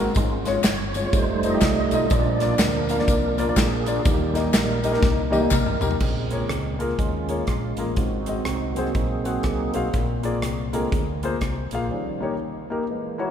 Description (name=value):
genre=uptempo gospel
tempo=122 BPM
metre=4/4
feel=swing 61% on 8ths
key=unclear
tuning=A4 = 441 Hz
part: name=dark grand piano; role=accompaniment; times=0.0-13.3 s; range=Ab2 to Bb5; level=-26 LUFS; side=left 3 dB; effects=none
part: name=percussive tonewheel organ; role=sustained chords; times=0.0-13.3 s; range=Db3 to Eb5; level=-27 LUFS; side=right 3 dB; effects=slow rotary speaker, overdrive, chorus vibrato
part: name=fingered electric bass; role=bass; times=0.0-11.9 s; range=F1 to Eb2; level=-29 LUFS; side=equal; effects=none
part: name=tambourine and handclaps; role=percussion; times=0.1-5.9 s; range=none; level=-33 LUFS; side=left 5 dB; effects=none
part: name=modern studio drum kit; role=drums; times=0.2-11.8 s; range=crash cymbal, hi-hat, kick drum, rim click, snare drum, toms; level=-25 LUFS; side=equal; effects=none
room=wet cathedral reverb, RT60 4.5 s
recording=recorded in a church or concert hall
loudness=-20 LUFS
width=side -8 dB against mid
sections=0.0-6.0 A section; 6.0-13.3 B section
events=tonewheel organ solo 0.0-6.0, 6.0-13.3; drum fill 5.0-6.0; break 11.9-13.3; grand piano fill 12.9-13.3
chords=0.2 Db/Ab; 1.1 F7; 2.1 Bb; 4.1 Eb; 6.0 Bbm7; 8.0 Ab7; 9.9 Bb7; 11.9 Eb7